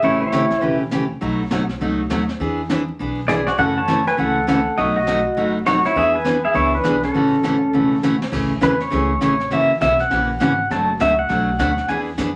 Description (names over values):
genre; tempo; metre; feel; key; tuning
country, western swing; 202 BPM; 4/4; swing 62% on 8ths; A major; A4 = 439 Hz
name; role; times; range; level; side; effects
pedal steel guitar; melody; 0.0-0.8, 3.3-12.0 s; C#4 to A5; -20 LUFS; equal; none
picked steel-string acoustic guitar; accompaniment; 0.0-12.3 s; B2 to G#4; -23 LUFS; equal; none
upright bass; bass; 0.0-12.4 s; E1 to F#2; -32 LUFS; equal; none
jazz brush drum kit; drums; 0.0-12.4 s; brushed snare drum, crash cymbal, hi-hat, kick drum, snare drum; -31 LUFS; equal; none
room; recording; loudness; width
wet small room reverb, RT60 0.6 s; vinyl crackle; -19 LUFS; mono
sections
0.0-8.3 A section; 8.3-12.4 B section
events
drum fill 8.0; pedal steel guitar solo 8.3-12.4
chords
0.0 A7; 1.2 B7; 2.4 E7; 3.6 F#m7; 4.8 B7; 6.0 E7; 7.1 A6; 8.3 Amaj7; 9.5 F#7; 10.7 Bm7/F#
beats
| 0.03 0.32 0.62 0.92 | 1.21 1.51 1.81 2.10 | 2.40 2.70 2.99 3.29 | 3.59 3.88 4.18 4.48 | 4.77 5.07 5.37 5.66 | 5.96 6.25 6.55 6.85 | 7.14 7.44 7.74 8.03 | 8.33 8.63 8.92 9.22 | 9.52 9.81 10.11 10.40 | 10.70 11.00 11.29 11.59 | 11.88 12.18